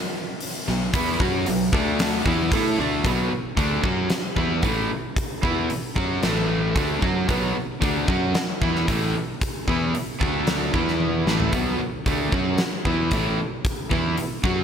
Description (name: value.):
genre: hard rock.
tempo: 113 BPM.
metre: 4/4.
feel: straight.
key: B minor.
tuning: A4 = 439 Hz.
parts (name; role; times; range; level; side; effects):
huge arena drum kit; drums; 0.4-14.6 s; hi-hat, kick drum, snare drum, toms; -25 LUFS; equal; gated reverb.
overdriven electric guitar; riff; 0.7-14.6 s; A2 to A4; -27 LUFS; left 11 dB; none.
overdriven semi-hollow guitar; riff; 0.7-14.6 s; A2 to A4; -26 LUFS; right 9 dB; lush chorus.
fuzz fingered electric bass; bass; 0.7-14.6 s; A1 to A2; -28 LUFS; equal; overdrive.
room: light reverb, studio ambience.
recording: bright 1980s-style digital production.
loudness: -20 LUFS.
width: side -8 dB against mid.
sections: 0.0-3.1 A section; 3.1-14.6 B section.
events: drum fill 11.0-11.5.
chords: 0.0 B5; 1.7 D5; 2.3 Bm; 6.2 A5; 6.8 Bm; 10.2 D5; 10.7 E5; 11.3 Bm.